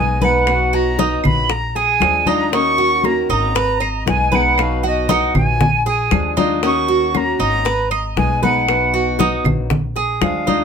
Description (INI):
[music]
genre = latin, Cuban son and guajira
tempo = 117 BPM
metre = 4/4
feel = straight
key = Eb minor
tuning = A4 = 440 Hz
[part]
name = jazz flute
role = melody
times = 0.0-10.6 s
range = D#5 to Db6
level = -18 LUFS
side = right 1 dB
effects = none
[part]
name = fingerpicked old ladder-braced acoustic guitar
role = accompaniment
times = 0.0-10.6 s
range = B2 to Ab4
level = -22 LUFS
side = left 5 dB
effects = none
[part]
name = Cuban tres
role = arpeggios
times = 0.0-10.6 s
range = D#4 to Eb5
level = -20 LUFS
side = right 5 dB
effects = none
[part]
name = upright bass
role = bass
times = 0.0-10.6 s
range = Ab1 to Eb2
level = -22 LUFS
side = equal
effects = none
[part]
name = congas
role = percussion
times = 0.2-10.6 s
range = none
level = -21 LUFS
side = left 2 dB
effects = none
[part]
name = bongos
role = percussion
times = 0.5-10.6 s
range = none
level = -24 LUFS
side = left 6 dB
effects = none
[part]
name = claves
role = percussion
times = 0.5-10.5 s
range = none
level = -26 LUFS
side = right 6 dB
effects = none
[sound]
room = moderate small room ambience, RT60 0.5 s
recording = minimal, uncompressed stereo recording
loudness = -14 LUFS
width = side -6 dB against mid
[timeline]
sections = 0.0-10.6 A section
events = none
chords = 0.5 B; 1.5 Bb7; 2.5 Ebm7; 3.6 Abm; 4.6 B; 5.6 Bb7; 6.6 Ebm7; 7.7 Abm; 8.7 B; 9.7 Bb7